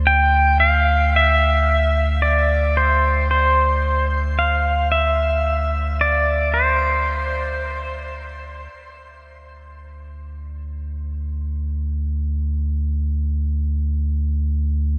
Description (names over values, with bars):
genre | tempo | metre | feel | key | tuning
ambient | 56 BPM | 4/4 | straight | D minor | A4 = 441 Hz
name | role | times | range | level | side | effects
warm sub bass | bass | 0.0-15.0 s | D2 | -23 LUFS | equal | none
pedal steel guitar | melody | 0.1-8.1 s | C5 to G5 | -20 LUFS | equal | shimmer reverb, delay
room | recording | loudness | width
wet cathedral reverb, RT60 6.5 s | in a vast, echoing space | -19 LUFS | mono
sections
0.0-15.0 A section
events
none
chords
0.0 D7sus2; 8.7 N.C.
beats
| 0.06 1.13 2.21 3.29 | 4.36 5.44 6.53 7.63 | 8.73 9.82 10.91 11.99 | 13.07 14.16